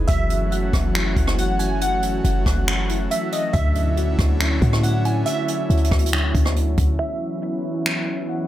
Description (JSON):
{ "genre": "hip hop, atmospheric cloud-rap", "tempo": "139 BPM", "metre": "4/4", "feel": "half-time", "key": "C# minor", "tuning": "A4 = 440 Hz", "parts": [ { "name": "glassy wavetable pluck", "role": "melody", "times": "0.0-8.5 s", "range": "D#5 to G#5", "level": "-28 LUFS", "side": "right 1 dB", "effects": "chorus, low-pass filter, tape echo" }, { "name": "airy breathy pad", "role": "sustained chords", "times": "0.0-8.5 s", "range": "D3 to F#4", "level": "-26 LUFS", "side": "right 1 dB", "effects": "chorus, sidechain pumping, low-pass filter" }, { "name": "soft electric-piano-like synth keys", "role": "arpeggios", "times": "0.0-7.0 s", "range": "D3 to F#5", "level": "-30 LUFS", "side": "left 3 dB", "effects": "chorus, phaser, tape echo" }, { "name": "clean 808-style bass", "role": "bass", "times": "0.0-7.0 s", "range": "F#1 to A2", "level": "-21 LUFS", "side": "equal", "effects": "none" }, { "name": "jazz brush drum kit", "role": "drums", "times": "0.1-8.0 s", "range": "finger snaps, hi-hat, kick drum, rim click", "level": "-23 LUFS", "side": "equal", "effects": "none" } ], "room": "light reverb", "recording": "none", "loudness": "-18 LUFS", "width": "side -13 dB against mid", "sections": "0.0-7.0 A section; 7.0-8.5 B section", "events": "filter sweep 7.0-8.5", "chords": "0.1 F#m7; 3.5 Dmaj9; 7.0 C#m7", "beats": "| 0.09 0.52 0.95 1.38 | 1.81 2.25 2.68 3.11 | 3.54 3.97 4.40 4.83 | 5.27 5.70 6.13 6.56 | 6.99 7.42 7.86 8.29" }